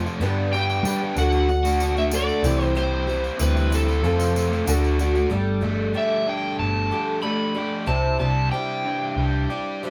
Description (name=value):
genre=folk rock and heartland rock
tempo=94 BPM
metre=4/4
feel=straight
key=G major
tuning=A4 = 439 Hz
part: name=picked twelve-string acoustic guitar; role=accompaniment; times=0.0-9.9 s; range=G2 to B4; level=-31 LUFS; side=equal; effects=none
part: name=warm upright piano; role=accompaniment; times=0.0-5.2 s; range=C4 to B4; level=-32 LUFS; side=equal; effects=none
part: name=overdriven semi-hollow guitar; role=riff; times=0.0-9.9 s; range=F2 to G4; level=-30 LUFS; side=equal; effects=none
part: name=hollow-body short-scale picked electric bass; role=bass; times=0.0-9.4 s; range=G1 to G3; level=-26 LUFS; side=equal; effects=none
part: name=tambourine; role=percussion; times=0.1-5.2 s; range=none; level=-39 LUFS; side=equal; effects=none
part: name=overdriven slide guitar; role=melody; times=0.5-9.9 s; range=A4 to B5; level=-28 LUFS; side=equal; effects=none
room=moderate studio reverb, RT60 0.6 s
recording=band playing live in one room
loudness=-22 LUFS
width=mono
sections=0.0-5.3 A section; 5.3-9.9 B section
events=electric slide guitar solo 5.3-9.9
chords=0.2 G; 1.2 D; 2.4 C; 4.0 F; 4.7 D; 5.3 Gsus2; 7.9 Cadd9